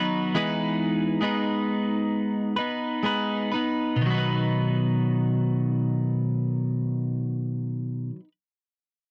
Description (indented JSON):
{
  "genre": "pop",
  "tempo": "60-72 BPM",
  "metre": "4/4",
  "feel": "straight",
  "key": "B major",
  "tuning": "A4 = 440 Hz",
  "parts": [
    { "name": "twelve-string electric guitar", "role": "solo", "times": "0.0-8.3 s", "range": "B2 to B4", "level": "-26 LUFS", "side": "equal", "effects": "warbly pitch drift" }
  ],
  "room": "moderate booth ambience, RT60 0.2 s",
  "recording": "dry, close 1970s-style studio recording",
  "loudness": "-26 LUFS",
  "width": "mono",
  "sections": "0.0-4.0 A section; 4.0-8.0 B section",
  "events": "slowing down 0.0-4.0",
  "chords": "0.4 Emaj7; 4.0 B"
}